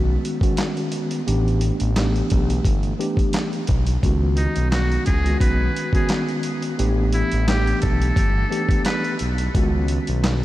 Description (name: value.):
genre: hip hop, boom-bap hip-hop.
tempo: 87 BPM.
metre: 4/4.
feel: swing 54% on 16ths.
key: C# minor.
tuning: A4 = 440 Hz.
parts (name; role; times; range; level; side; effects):
mellow tine electric piano; accompaniment; 0.0-10.4 s; D#3 to G4; -24 LUFS; equal; medium stereo tremolo, cassette tape, high-pass filter, low-pass filter.
smooth gliding synth bass; bass; 0.0-10.4 s; G1 to C#2; -21 LUFS; equal; none.
dusty soul sampler-style drum kit; drums; 0.2-10.4 s; handclaps, hi-hat, kick drum, snare drum; -23 LUFS; equal; none.
trumpet with metal mute; melody; 4.4-9.2 s; D#4 to B4; -28 LUFS; equal; high-pass filter, low-pass filter, tape echo.
room: moderate huge ambient reverb, RT60 7.4 s.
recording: dreamy mix soaked in reverb, vinyl crackle, faint mains hum.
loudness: -18 LUFS.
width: side -15 dB against mid.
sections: 0.0-10.4 A section.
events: none.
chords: 0.0 C#9sus4; 1.3 A9sus4; 4.0 C#9sus4; 6.8 A9sus4; 9.5 C#9sus4.